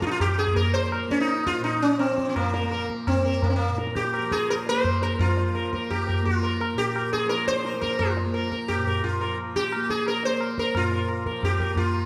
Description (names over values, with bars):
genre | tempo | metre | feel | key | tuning
indian classical, Hindustani | 171 BPM | 4/4 | straight | Bb raga kafi | A4 = 438 Hz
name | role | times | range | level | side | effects
sitar | melody | 0.0-12.1 s | Bb3 to C5 | -27 LUFS | equal | none
tanpura | drone | 0.0-12.1 s | Bb2 to Bb3 | -34 LUFS | equal | none
tabla | percussion | 0.0-12.1 s | none | -30 LUFS | equal | none
room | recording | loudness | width
wet recital hall reverb, RT60 1.6 s | none | -25 LUFS | mono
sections
0.0-5.2 A section; 5.2-12.1 B section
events
speeding up 0.0-12.1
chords
none